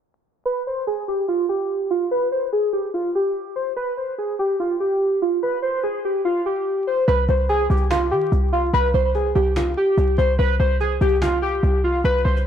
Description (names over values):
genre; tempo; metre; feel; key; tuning
hip hop, trap; 145 BPM; 4/4; half-time; unclear; A4 = 440 Hz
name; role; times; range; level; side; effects
warbly lo-fi synth keys; melody; 0.5-12.4 s; F4 to C5; -20 LUFS; equal; chorus, phaser, ping-pong delay
short 808-style bass; bass; 7.1-12.5 s; C2 to Eb3; -20 LUFS; equal; none
cajon; drums; 7.1-12.4 s; none; -33 LUFS; equal; none
room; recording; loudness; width
moderate recital hall reverb, RT60 1.4 s, studio ambience; blown-out, overdriven recording, vinyl crackle, overdrive, low-pass filter; -18 LUFS; side -9 dB against mid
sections
0.5-7.1 A section; 7.1-12.5 B section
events
filter sweep 0.5-7.1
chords
0.5 N.C.; 7.1 C5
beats
| 0.46 0.87 1.29 1.70 | 2.11 2.53 2.94 3.35 | 3.77 4.18 4.60 5.01 | 5.42 5.84 6.25 6.67 | 7.08 7.49 7.91 8.32 | 8.73 9.15 9.56 9.98 | 10.39 10.80 11.22 11.63 | 12.04 12.46